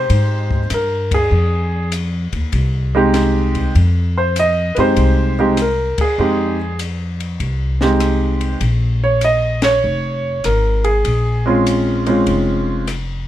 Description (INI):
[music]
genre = jazz piano trio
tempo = 99 BPM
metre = 4/4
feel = swing 67% on 8ths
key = F minor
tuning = A4 = 440 Hz
[part]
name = warm concert grand piano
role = melody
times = 0.0-12.8 s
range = Ab3 to Eb5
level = -16 LUFS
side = right 1 dB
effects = none
[part]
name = upright bass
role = bass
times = 0.0-13.3 s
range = F1 to Ab2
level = -18 LUFS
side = left 1 dB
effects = none
[part]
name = compact cocktail drum kit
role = drums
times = 0.1-13.1 s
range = hi-hat, kick drum, ride cymbal, rim click, snare drum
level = -26 LUFS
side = left 2 dB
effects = none
[sound]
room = light reverb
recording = none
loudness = -14 LUFS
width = side -12 dB against mid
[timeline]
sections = 0.0-13.3 A section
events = band accent 1.0-1.3, 5.9-6.2, 9.5-9.8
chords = 0.0 Fm7; 8.6 Bbm7